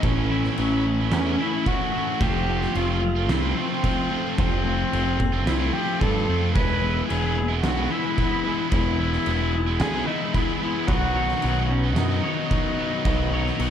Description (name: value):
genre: post-rock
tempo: 111 BPM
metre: 4/4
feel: straight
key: unclear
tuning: A4 = 440 Hz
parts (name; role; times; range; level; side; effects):
- warm cello; melody; 0.0-13.7 s; C4 to B4; -27 LUFS; equal; digital delay
- pedal steel guitar; sustained chords; 0.0-13.7 s; D#4 to A5; -41 LUFS; equal; none
- twangy electric guitar; arpeggios; 0.0-13.7 s; E2 to C#5; -34 LUFS; equal; ensemble chorus, digital delay
- cranked stack guitar; riff; 0.0-13.7 s; A2 to F4; -29 LUFS; right 12 dB; overdrive
- thick fuzz guitar; riff; 0.0-13.7 s; A2 to F4; -29 LUFS; left 11 dB; distortion
- growling picked electric bass; bass; 0.0-13.7 s; E1 to G2; -25 LUFS; right 1 dB; overdrive
- oversized low-tuned drum kit; drums; 0.0-13.7 s; crash cymbal, kick drum, snare drum; -27 LUFS; equal; none
room: small room ambience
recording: none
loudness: -21 LUFS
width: side -9 dB against mid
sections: 0.0-13.7 A section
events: none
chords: 0.0 A6; 2.2 F; 6.6 Emaj7; 10.9 Badd9